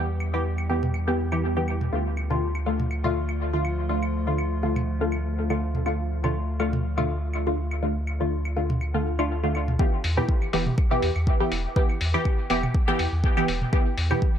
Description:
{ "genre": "dub techno", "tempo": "122 BPM", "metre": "4/4", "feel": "swing 54% on 16ths", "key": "E phrygian", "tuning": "A4 = 439 Hz", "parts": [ { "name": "warbly tape-like pad", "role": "sustained chords", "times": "0.0-9.8 s", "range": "D3 to G4", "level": "-35 LUFS", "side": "right 1 dB", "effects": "chorus, built-in reverb, phaser, sidechain pumping" }, { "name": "filtered dub chord stab", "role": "stabs", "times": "0.0-14.4 s", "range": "D3 to G4", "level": "-26 LUFS", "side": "equal", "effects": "chorus, phaser, sidechain pumping, dub echo" }, { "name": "soft dub sub bass", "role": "bass", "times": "0.0-14.1 s", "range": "E1 to E2", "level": "-27 LUFS", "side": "equal", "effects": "sidechain pumping" }, { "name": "electronic claves and toms", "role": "percussion", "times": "0.2-14.2 s", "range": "none", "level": "-33 LUFS", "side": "right 1 dB", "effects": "overdrive, sidechain pumping on perc, sidechain pumping on toms, dub echo" }, { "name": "electronic kick drum", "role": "drums", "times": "9.8-14.3 s", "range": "none", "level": "-22 LUFS", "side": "equal", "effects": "none" }, { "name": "electronic hi-hat", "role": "drums", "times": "10.0-14.1 s", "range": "none", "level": "-32 LUFS", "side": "left 3 dB", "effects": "low-pass filter on hats" } ], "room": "moderate spring reverb, RT60 2.0 s", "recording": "none", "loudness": "-22 LUFS", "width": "side -9 dB against mid", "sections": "0.0-9.8 A section; 9.8-14.4 B section", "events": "none", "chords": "0.0 Em; 1.9 Dm; 9.8 Em" }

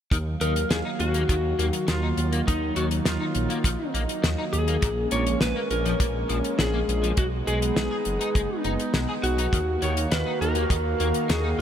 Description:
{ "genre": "synthwave", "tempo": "102 BPM", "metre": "4/4", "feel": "straight", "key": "Eb minor", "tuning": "A4 = 442 Hz", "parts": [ { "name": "chorused pulse-width pad", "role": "sustained chords", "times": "0.1-11.6 s", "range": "Eb3 to F5", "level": "-30 LUFS", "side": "right 2 dB", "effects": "sidechain pumping, shimmer reverb" }, { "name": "electric guitar at the edge of break-up", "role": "riff", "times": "0.1-11.5 s", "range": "Bb2 to Ab4", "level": "-34 LUFS", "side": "left 4 dB", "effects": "ensemble chorus, tape echo, shimmer reverb" }, { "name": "dark detuned saw bass", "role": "bass", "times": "0.1-11.6 s", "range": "Gb1 to Eb2", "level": "-27 LUFS", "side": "equal", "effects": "sidechain pumping" }, { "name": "damped 70s drum kit", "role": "drums", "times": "0.1-11.4 s", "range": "hi-hat, snare drum", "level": "-29 LUFS", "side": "left 1 dB", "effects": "small room ambience" }, { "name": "kick drum", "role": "drums", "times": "0.1-10.8 s", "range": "none", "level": "-23 LUFS", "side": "equal", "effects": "small room ambience" }, { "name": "lightly driven lead guitar", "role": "melody", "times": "0.4-11.6 s", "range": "Eb4 to Db5", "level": "-28 LUFS", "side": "left 1 dB", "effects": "ping-pong delay, shimmer reverb" } ], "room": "light reverb, studio reverb", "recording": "none", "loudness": "-22 LUFS", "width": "side -9 dB against mid", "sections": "0.1-11.6 A section", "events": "none", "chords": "0.1 Ebmadd9; 4.8 Bbm7; 7.2 Abm; 9.5 Ebmadd9" }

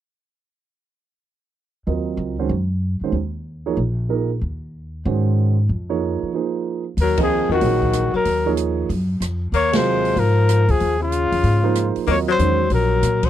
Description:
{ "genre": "modal jazz", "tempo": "188 BPM", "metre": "4/4", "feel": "swing 64% on 8ths", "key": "Eb dorian", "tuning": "A4 = 442 Hz", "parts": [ { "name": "warm concert grand piano", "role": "accompaniment", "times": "1.9-12.6 s", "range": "C3 to F5", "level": "-23 LUFS", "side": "right 8 dB", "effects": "none" }, { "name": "upright bass", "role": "bass", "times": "1.9-13.3 s", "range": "Bb1 to Bb2", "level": "-21 LUFS", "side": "equal", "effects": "none" }, { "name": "mellow trumpet", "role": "melody", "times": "7.0-13.3 s", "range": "F4 to Db5", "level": "-20 LUFS", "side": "equal", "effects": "none" }, { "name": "breathy tenor saxophone", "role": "second line", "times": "7.0-13.3 s", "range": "Db3 to Bb3", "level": "-23 LUFS", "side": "left 12 dB", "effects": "none" }, { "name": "open jazz drum kit", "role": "drums", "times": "7.0-13.3 s", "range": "hi-hat, kick drum, ride cymbal, rim click, snare drum", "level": "-28 LUFS", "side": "equal", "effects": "none" } ], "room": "little or no reverb", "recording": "dry, close 1970s-style studio recording", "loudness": "-17 LUFS", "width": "side -11 dB against mid", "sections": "1.9-7.0 A section; 7.0-13.3 B section", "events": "break 6.3-7.0; band accent 7.1, 9.7", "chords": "1.9 Ebm9; 4.4 Db6/Eb; 7.0 Ebm9; 9.5 Db6; 12.1 Ebm9" }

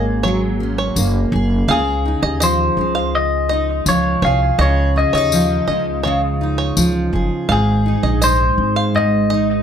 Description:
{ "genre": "acoustic pop", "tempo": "83 BPM", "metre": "4/4", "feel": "straight", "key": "Db major", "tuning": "A4 = 441 Hz", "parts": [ { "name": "clean electric guitar", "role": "melody", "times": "0.0-9.6 s", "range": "Ab4 to F5", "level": "-19 LUFS", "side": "left 2 dB", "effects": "tape echo" }, { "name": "fingerpicked steel-string acoustic guitar", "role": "accompaniment", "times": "0.0-9.6 s", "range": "Ab2 to Ab4", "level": "-19 LUFS", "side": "right 1 dB", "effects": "double-tracked left and right, plate reverb" }, { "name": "bluegrass banjo", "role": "arpeggios", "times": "0.0-9.5 s", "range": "Db5 to F5", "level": "-24 LUFS", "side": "right 5 dB", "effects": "none" }, { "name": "upright bass", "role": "bass", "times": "0.0-9.6 s", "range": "Gb1 to Eb2", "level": "-20 LUFS", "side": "equal", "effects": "none" }, { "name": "tambourine", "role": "percussion", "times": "1.0-8.4 s", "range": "none", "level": "-23 LUFS", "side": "left 6 dB", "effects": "none" } ], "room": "moderate studio reverb, RT60 0.6 s", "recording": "none", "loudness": "-14 LUFS", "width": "side -8 dB against mid", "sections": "0.0-9.6 A section", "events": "none", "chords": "0.0 Gbadd9; 1.7 Dbadd9; 7.5 Ab" }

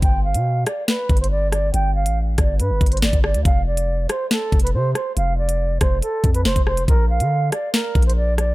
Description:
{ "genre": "hip hop, drill", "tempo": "140 BPM", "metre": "4/4", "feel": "half-time", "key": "unclear", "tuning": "A4 = 440 Hz", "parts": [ { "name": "silver concert flute", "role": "melody", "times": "0.0-8.5 s", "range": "A4 to G5", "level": "-24 LUFS", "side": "right 2 dB", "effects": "low-pass filter, tape echo" }, { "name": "long sustained 808-style bass", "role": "bass", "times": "0.0-8.5 s", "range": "F1 to D3", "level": "-20 LUFS", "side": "equal", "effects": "none" }, { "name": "drill drum kit", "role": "drums", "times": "0.0-8.5 s", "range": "hi-hat, kick drum, rim click, snare drum", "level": "-18 LUFS", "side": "equal", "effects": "none" } ], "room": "little or no reverb", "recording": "none", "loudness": "-17 LUFS", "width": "side -19 dB against mid", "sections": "0.0-8.5 A section", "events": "none", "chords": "0.0 G5; 3.5 F5; 6.9 Bb" }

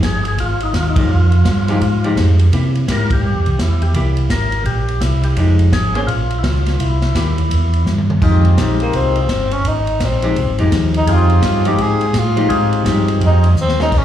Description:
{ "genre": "soul jazz organ trio", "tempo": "168 BPM", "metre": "4/4", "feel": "swing 63% on 8ths", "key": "F minor", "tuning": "A4 = 444 Hz", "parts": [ { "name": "percussive tonewheel organ", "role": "melody", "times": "0.0-13.5 s", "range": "Ab3 to Bb4", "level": "-21 LUFS", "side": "left 2 dB", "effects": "slow rotary speaker, slapback echo" }, { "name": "archtop guitar, miked and amplified", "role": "accompaniment", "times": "0.0-14.0 s", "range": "F3 to C5", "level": "-21 LUFS", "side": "equal", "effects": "slapback echo" }, { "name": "mellow tonewheel organ", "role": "bass", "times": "0.0-14.0 s", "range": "F1 to C3", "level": "-15 LUFS", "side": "equal", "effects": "chorus vibrato, slow rotary speaker" }, { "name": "swinging big-band drum kit", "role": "drums", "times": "0.0-14.0 s", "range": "crash cymbal, hi-hat, kick drum, ride cymbal, snare drum, toms", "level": "-21 LUFS", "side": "equal", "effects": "none" }, { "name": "breathy tenor saxophone", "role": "melody", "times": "8.8-14.0 s", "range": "G3 to Ab4", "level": "-19 LUFS", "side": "left 1 dB", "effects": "slapback echo" } ], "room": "light reverb, studio ambience", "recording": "live gig heard through the venue's PA, club reverb", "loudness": "-13 LUFS", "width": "side -11 dB against mid", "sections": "0.0-8.2 A section; 8.2-14.0 B section", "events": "band accent 0.9, 3.1; drum fill 7.9-8.2, 13.6-13.9; tenor saxophone solo 8.2-14.0", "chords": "0.0 Fm9; 2.5 C7; 5.4 Fm9; 6.1 Bbm; 6.8 C7; 8.2 Fm9" }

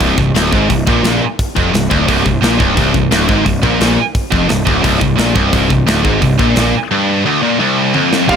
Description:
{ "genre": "heavy metal", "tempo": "174 BPM", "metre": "4/4", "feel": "straight", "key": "unclear", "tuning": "A4 = 441 Hz", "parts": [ { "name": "heavy high-gain guitar", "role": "riff", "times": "0.0-8.4 s", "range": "C2 to C3", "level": "-15 LUFS", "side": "right 11 dB", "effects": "distortion" }, { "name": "high-gain distorted guitar", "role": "riff", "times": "0.0-8.4 s", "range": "C2 to C3", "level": "-16 LUFS", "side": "left 11 dB", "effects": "distortion" }, { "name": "fuzz picked electric bass", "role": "bass", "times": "0.0-8.4 s", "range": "C1 to Bb1", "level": "-17 LUFS", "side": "equal", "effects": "overdrive" }, { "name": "tight metal drum kit", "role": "drums", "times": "0.0-8.4 s", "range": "china cymbal, hi-hat, kick drum, snare drum, toms", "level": "-17 LUFS", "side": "equal", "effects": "none" }, { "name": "nasal lead guitar with a parked wah", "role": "melody", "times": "8.3-8.4 s", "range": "F5", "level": "-12 LUFS", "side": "right 5 dB", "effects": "overdrive" }, { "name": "high-gain lead guitar", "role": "second line", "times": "8.3-8.4 s", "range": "F4", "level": "-19 LUFS", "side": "right 2 dB", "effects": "distortion" }, { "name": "pipe organ, stopped flute", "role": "sustained chords", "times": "8.3-8.4 s", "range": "C4 to D5", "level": "-20 LUFS", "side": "equal", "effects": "none" }, { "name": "high-gain distorted guitar", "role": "riff", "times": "8.3-8.4 s", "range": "C2 to C3", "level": "-19 LUFS", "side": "left 1 dB", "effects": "none" } ], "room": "small room ambience", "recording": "none", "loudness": "-10 LUFS", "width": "side -7 dB against mid", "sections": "0.0-8.3 A section", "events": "drum fill 7.9-8.3", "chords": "0.0 C5" }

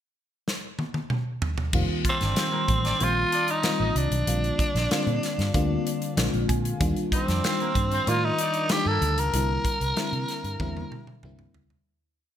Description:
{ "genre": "polished 1980s jazz-funk pop", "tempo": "95 BPM", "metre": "4/4", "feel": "straight", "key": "unclear", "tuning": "A4 = 445 Hz", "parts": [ { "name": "modern studio drum kit", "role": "drums", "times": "0.5-11.8 s", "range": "crash cymbal, hi-hat, kick drum, snare drum, toms", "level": "-28 LUFS", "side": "equal", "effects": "gated reverb" }, { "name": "FM electric piano with soft pad layer", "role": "accompaniment", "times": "1.7-11.9 s", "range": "D3 to Ab5", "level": "-29 LUFS", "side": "left 2 dB", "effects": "lush chorus" }, { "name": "vintage muted fingered electric bass", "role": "bass", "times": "1.7-11.8 s", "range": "F1 to C3", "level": "-27 LUFS", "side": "equal", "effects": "none" }, { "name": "warm horn section", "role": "second line", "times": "2.0-9.1 s", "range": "Bb3 to F5", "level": "-34 LUFS", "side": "left 1 dB", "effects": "none" }, { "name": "growling tenor saxophone", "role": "melody", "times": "2.1-11.2 s", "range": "C4 to Bb4", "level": "-27 LUFS", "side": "right 1 dB", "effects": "none" } ], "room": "light reverb, small room ambience", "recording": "bright 1980s-style digital production", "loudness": "-23 LUFS", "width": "side -10 dB against mid", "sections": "0.0-1.7 pickup bar; 1.7-11.9 verse", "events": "drum fill 0.5-1.7, 10.6-11.9; FM electric piano fill 5.9-6.8; fade-out 9.3-11.9", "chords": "0.0 N.C.; 1.7 F7sus4; 4.3 Bb6; 6.2 Bb7; 6.8 Ebmaj7; 9.3 C7" }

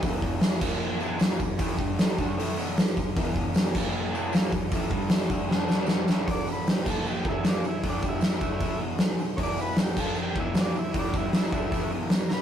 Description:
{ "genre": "garage rock duo or trio", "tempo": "154 BPM", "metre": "4/4", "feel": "straight", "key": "unclear", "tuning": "A4 = 437 Hz", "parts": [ { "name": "crunchy overdriven guitar", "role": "riff", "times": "0.0-12.4 s", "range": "E2 to D4", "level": "-31 LUFS", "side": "equal", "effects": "none" }, { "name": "oversized low-tuned drum kit", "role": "drums", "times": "0.0-12.4 s", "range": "crash cymbal, hi-hat, kick drum, snare drum", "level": "-25 LUFS", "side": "equal", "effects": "none" }, { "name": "tambourine", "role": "percussion", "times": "0.0-12.4 s", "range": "none", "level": "-49 LUFS", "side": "right 7 dB", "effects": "none" }, { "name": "overdriven combo organ", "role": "melody", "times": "6.3-12.4 s", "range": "D4 to D5", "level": "-33 LUFS", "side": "equal", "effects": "none" } ], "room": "light reverb", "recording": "rough rehearsal-room recording, warm saturation, lossy compression artefacts", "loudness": "-24 LUFS", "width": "side -9 dB against mid", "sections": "0.0-6.3 A section; 6.3-12.4 B section", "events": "drum fill 5.5-6.3; transistor combo organ solo 6.3-12.4", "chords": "0.0 E5; 0.6 A#5; 1.0 E5; 3.7 A#5; 4.1 E5; 5.5 D5; 5.9 Gsus2; 6.3 E5; 6.9 A#5; 7.3 E5; 10.0 A#5; 10.4 E5" }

